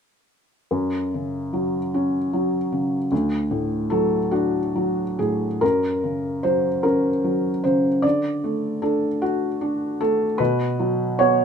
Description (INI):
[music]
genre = neoclassical minimalist piano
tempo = 50 BPM (dotted quarters)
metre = 6/8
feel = rubato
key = unclear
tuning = A4 = 440 Hz
[part]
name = felt-muted upright piano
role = solo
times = 0.7-11.4 s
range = D2 to D5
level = -20 LUFS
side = equal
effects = none
[sound]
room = moderate studio reverb, RT60 0.6 s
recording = minimal, uncompressed stereo recording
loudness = -20 LUFS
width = side -7 dB against mid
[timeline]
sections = 0.7-5.6 A section; 5.6-11.4 B section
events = none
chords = 0.7 Gb5; 3.1 D; 5.6 Gb; 8.0 D; 10.4 Cb5